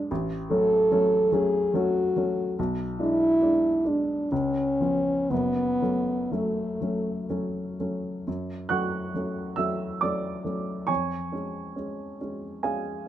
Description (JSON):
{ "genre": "classical, romantic duo for French horn and grand piano", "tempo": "57-74 BPM", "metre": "3/4", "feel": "rubato", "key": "F# minor", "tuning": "A4 = 439 Hz", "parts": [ { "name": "dark French horn", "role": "melody", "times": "0.0-7.3 s", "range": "A3 to A4", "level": "-23 LUFS", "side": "equal", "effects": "none" }, { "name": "warm baby grand piano", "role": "accompaniment", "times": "0.0-13.1 s", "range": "F#1 to F#6", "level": "-28 LUFS", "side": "equal", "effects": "none" } ], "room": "light reverb", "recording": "close, detailed microphones", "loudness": "-24 LUFS", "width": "side -12 dB against mid", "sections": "0.0-8.3 A section; 8.3-13.1 B section", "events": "none", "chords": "0.1 F#m/A; 2.6 G#dim/B; 4.3 C#7; 5.3 F#m; 10.9 C#/E#", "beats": "| 0.10 0.91 1.74 | 2.58 3.41 4.30 | 5.31 6.33 7.30 | 8.27 9.15 10.03 | 10.89 11.78 12.65" }